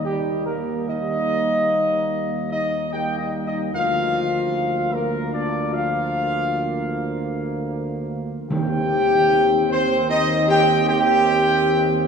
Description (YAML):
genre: classical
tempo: 75 BPM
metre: 3/4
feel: straight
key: Eb major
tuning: A4 = 443 Hz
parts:
  - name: dark trumpet section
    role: melody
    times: 0.0-12.1 s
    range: G4 to G5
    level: -21 LUFS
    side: right 1 dB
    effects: none
  - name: clear trombone section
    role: sustained chords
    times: 0.0-12.1 s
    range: Eb3 to C4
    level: -29 LUFS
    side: right 2 dB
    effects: none
  - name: mellow French horn section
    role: sustained chords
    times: 0.0-12.1 s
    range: G3 to G4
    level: -24 LUFS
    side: left 5 dB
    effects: none
  - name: mellow tuba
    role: bass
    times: 0.0-12.1 s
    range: D2 to Eb2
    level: -27 LUFS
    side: right 3 dB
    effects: none
  - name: timpani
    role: percussion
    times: 8.5-9.7 s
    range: Eb3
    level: -30 LUFS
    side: right 2 dB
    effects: none
room: wet cathedral reverb, RT60 4.8 s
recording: minimal, uncompressed stereo recording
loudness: -18 LUFS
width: side -6 dB against mid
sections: 0.0-12.1 A section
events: none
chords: 0.0 Eb; 3.7 Bb/D; 8.5 Cm/Eb